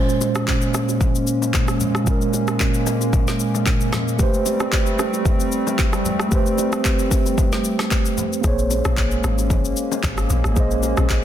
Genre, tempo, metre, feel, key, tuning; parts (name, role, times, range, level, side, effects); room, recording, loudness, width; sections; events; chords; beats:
amapiano; 113 BPM; 4/4; swing 55% on 16ths; A4 = 440 Hz
mellow tine electric piano; accompaniment; 0.0-11.2 s; Bb2 to Eb5; -22 LUFS; right 3 dB; fast stereo tremolo
hollow soft pad; sustained chords; 0.0-11.2 s; G3 to Db4; -25 LUFS; left 1 dB; chorus, sidechain pumping
deep house drum kit; drums; 0.1-11.2 s; handclaps, kick drum, rim click, shaker, snare drum; -21 LUFS; equal
bongos and congas; percussion; 0.2-11.2 s; -31 LUFS; left 6 dB
deep log drum bass; bass; 8.4-11.2 s; Ab1 to Bb1; -21 LUFS; equal
light reverb, digital ambience; dense, heavily limited modern master; -17 LUFS; side -11 dB against mid
0.0-11.2 A section
0.0 Bbm9; 4.2 Am9; 8.4 Bbm9
0.48 1.01 1.54 | 2.07 2.60 3.13 3.66 | 4.19 4.72 5.25 5.79 | 6.32 6.85 7.38 7.91 | 8.44 8.97 9.50 10.03 | 10.56 11.10